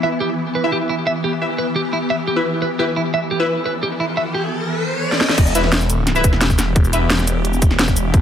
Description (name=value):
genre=dark technical drum and bass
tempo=174 BPM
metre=4/4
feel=straight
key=E minor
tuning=A4 = 440 Hz
part: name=swarming drone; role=sustained chords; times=0.0-8.2 s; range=E3 to A4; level=-24 LUFS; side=equal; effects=built-in reverb, sidechain pumping
part: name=clean electric guitar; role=arpeggios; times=0.0-4.4 s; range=E4 to E5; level=-22 LUFS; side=right 2 dB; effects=wide subtle chorus, sidechain pumping, ping-pong delay
part: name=orchestra-hit-like synth stab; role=stabs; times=0.0-3.5, 5.6-7.0 s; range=E4 to E5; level=-23 LUFS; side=left 1 dB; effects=built-in reverb, ping-pong delay
part: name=riser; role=sound effects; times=3.3-5.4 s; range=none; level=-25 LUFS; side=left 1 dB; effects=none
part: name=drum and bass drum kit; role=drums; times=5.1-8.2 s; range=crash cymbal, hi-hat, shaker, snare drum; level=-19 LUFS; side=equal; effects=overdrive
part: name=phased detuned saw bass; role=bass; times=5.4-8.2 s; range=E1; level=-18 LUFS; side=equal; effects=phaser, overdrive
part: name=electronic kick drum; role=drums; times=5.4-8.2 s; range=none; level=-14 LUFS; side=equal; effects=overdrive
room=light reverb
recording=none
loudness=-16 LUFS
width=side -9 dB against mid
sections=0.0-5.4 A section; 5.4-8.2 B section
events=riser 3.3-5.4; drum fill 5.1; drop 5.4-8.2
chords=0.0 Em